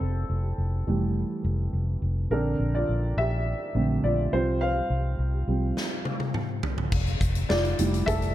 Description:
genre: piano-driven pop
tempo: 104 BPM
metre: 4/4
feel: straight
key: F major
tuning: A4 = 438 Hz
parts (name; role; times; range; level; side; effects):
- dark upright piano; accompaniment; 0.0-8.3 s; D3 to F5; -28 LUFS; right 1 dB; none
- vintage muted fingered electric bass; bass; 0.0-8.3 s; F1 to C2; -26 LUFS; equal; none
- huge arena drum kit; drums; 5.8-8.3 s; crash cymbal, hi-hat, kick drum, snare drum, toms; -28 LUFS; left 1 dB; none
room: light reverb, small room ambience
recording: none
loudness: -24 LUFS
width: side -13 dB against mid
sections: 0.0-6.9 A section; 6.9-8.3 B section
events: upright piano solo 0.0-6.9, 6.9-8.3; break 5.8-6.9; drum fill 5.8-6.9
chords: 0.0 Fmaj7; 2.3 Bbmaj7; 4.3 Csus4; 6.9 Fmaj7

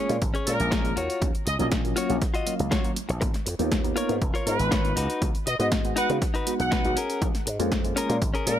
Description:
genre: filtered disco house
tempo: 120 BPM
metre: 4/4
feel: straight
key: G# dorian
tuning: A4 = 439 Hz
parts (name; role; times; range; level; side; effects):
- reed electric piano; accompaniment; 0.0-8.6 s; F#3 to E#5; -30 LUFS; equal; overdrive, phaser, sidechain pumping, low-pass filter
- direct-recorded clean electric guitar; riff; 0.0-8.5 s; C#4 to D#5; -30 LUFS; left 3 dB; sidechain pumping, low-pass filter
- slap bass with an envelope filter; bass; 0.1-8.6 s; E#1 to C#3; -29 LUFS; equal; sidechain pumping, low-pass filter
- punchy analog drum machine; drums; 0.1-8.6 s; hi-hat, snare drum; -32 LUFS; left 1 dB; overdrive, sidechain pumping on hats
- electronic kick drum; drums; 0.2-8.3 s; none; -27 LUFS; equal; overdrive
- clear horn section; melody; 0.5-8.6 s; A#4 to F#5; -30 LUFS; right 1 dB; sidechain pumping, low-pass filter, dub echo
room: digital ambience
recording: none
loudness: -23 LUFS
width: side -11 dB against mid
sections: 0.0-8.6 A section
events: none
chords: 0.0 A#m7; 1.0 D#m9; 3.2 G#m69; 5.0 C#9sus4; 7.0 A#m7

